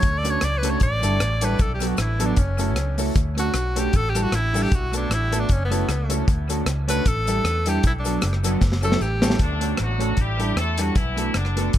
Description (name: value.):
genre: ska.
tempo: 154 BPM.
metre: 4/4.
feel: swing 56% on 8ths.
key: D major.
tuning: A4 = 439 Hz.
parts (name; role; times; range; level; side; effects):
clear tenor saxophone; melody; 0.0-9.4 s; B3 to D5; -27 LUFS; equal; dub echo.
vintage muted fingered electric bass; bass; 0.0-11.8 s; F#1 to E2; -24 LUFS; equal; none.
deep reggae drum kit; drums; 0.0-11.8 s; hi-hat, kick drum, rim click, snare drum; -23 LUFS; equal; none.
cabasa; percussion; 0.0-9.3 s; none; -36 LUFS; left 6 dB; none.
mellow electric guitar; accompaniment; 0.2-11.7 s; F#3 to A4; -28 LUFS; right 4 dB; dub echo.
clear upright piano; stabs; 0.2-11.7 s; B3 to A4; -31 LUFS; left 4 dB; none.
clear horn section; melody; 9.4-11.7 s; D3 to A4; -27 LUFS; left 2 dB; none.
room: light reverb.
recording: none.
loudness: -19 LUFS.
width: side -12 dB against mid.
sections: 0.0-9.4 A section; 9.4-11.8 B section.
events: tenor saxophone solo 0.0-9.4; drum fill 8.6-9.4.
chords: 0.0 Dmaj7; 0.8 A7sus4; 1.6 Bm7; 2.4 F#m7; 3.2 Dmaj7; 3.9 A7sus4; 4.7 Bm7; 5.5 F#m7; 6.3 Dmaj7; 7.1 A7sus4; 7.8 Bm7; 8.6 F#m7; 9.0 A7; 9.4 Dmaj7; 10.2 A7sus4; 11.0 Bm7.